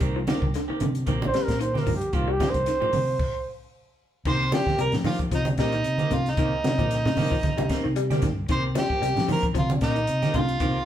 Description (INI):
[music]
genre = afrobeat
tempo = 113 BPM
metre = 4/4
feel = swing 55% on 16ths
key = C minor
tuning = A4 = 440 Hz
[part]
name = clean electric guitar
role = stabs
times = 0.0-10.8 s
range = Eb3 to G4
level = -34 LUFS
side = right 4 dB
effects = spring reverb
[part]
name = fingered electric bass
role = bass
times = 0.0-10.7 s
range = Bb1 to F3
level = -28 LUFS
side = left 1 dB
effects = none
[part]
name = compact cocktail drum kit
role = drums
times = 0.0-10.7 s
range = crash cymbal, hi-hat, kick drum, snare drum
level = -29 LUFS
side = left 1 dB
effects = none
[part]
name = electric guitar through a small old amp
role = arpeggios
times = 0.2-10.8 s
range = D3 to G3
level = -32 LUFS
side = left 3 dB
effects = none
[part]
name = congas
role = percussion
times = 0.3-10.5 s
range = none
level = -29 LUFS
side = right 2 dB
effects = none
[part]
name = clear trombone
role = melody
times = 1.3-3.5 s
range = F4 to C5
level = -26 LUFS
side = right 2 dB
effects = none
[part]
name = overdriven harmonica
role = melody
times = 4.3-10.8 s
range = Eb4 to C5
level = -27 LUFS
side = right 1 dB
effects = none
[sound]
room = moderate large studio reverb, RT60 1.1 s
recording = band playing live in one room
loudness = -22 LUFS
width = side -11 dB against mid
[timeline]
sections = 0.0-4.3 A section; 4.3-10.8 B section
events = trombone solo 0.0-4.3; stop 3.2-4.3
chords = 0.0 Cm7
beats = | 0.02 0.55 1.08 1.61 | 2.14 2.67 3.20 3.73 | 4.26 4.79 5.32 5.85 | 6.38 6.91 7.44 7.96 | 8.49 9.02 9.55 10.08 | 10.61